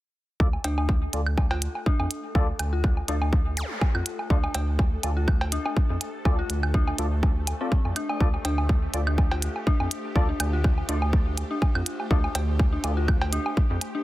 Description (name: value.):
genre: minimal techno.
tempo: 123 BPM.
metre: 4/4.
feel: swing 55% on 16ths.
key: D minor.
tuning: A4 = 440 Hz.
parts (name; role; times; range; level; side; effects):
percussive organ stab; stabs; 0.4-12.9 s; F4 to D5; -36 LUFS; left 2 dB; ensemble chorus, dub echo.
rubbery square bass; bass; 0.4-13.8 s; D2 to F2; -27 LUFS; equal; sidechain pumping.
electronic kick drum; drums; 0.4-13.7 s; none; -23 LUFS; equal; none.
airy breathy pad; texture; 3.1-14.0 s; G4 to A5; -46 LUFS; right 1 dB; none.
swarming drone; texture; 1.1-14.0 s; A3 to A4; -40 LUFS; left 1 dB; built-in reverb, sidechain pumping.
woodblock and cowbell; percussion; 0.5-13.9 s; none; -34 LUFS; right 1 dB; dub echo.
dark detuned synth bell; riff; 0.6-14.0 s; C4 to D5; -33 LUFS; left 2 dB; chorus, sidechain pumping, dub echo.
electronic hi-hat; drums; 0.6-13.9 s; none; -29 LUFS; right 2 dB; overdrive.
zap; sound effects; 3.6-3.7 s; none; -36 LUFS; equal; none.
room: little or no reverb.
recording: dense, heavily limited modern master.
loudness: -22 LUFS.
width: side -16 dB against mid.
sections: 0.4-14.0 A section.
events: none.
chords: 0.4 Dm.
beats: | 0.40 0.89 1.38 1.86 | 2.35 2.84 3.33 3.81 | 4.30 4.79 5.28 5.77 | 6.25 6.74 7.23 7.72 | 8.21 8.69 9.18 9.67 | 10.16 10.64 11.13 11.62 | 12.11 12.60 13.08 13.57.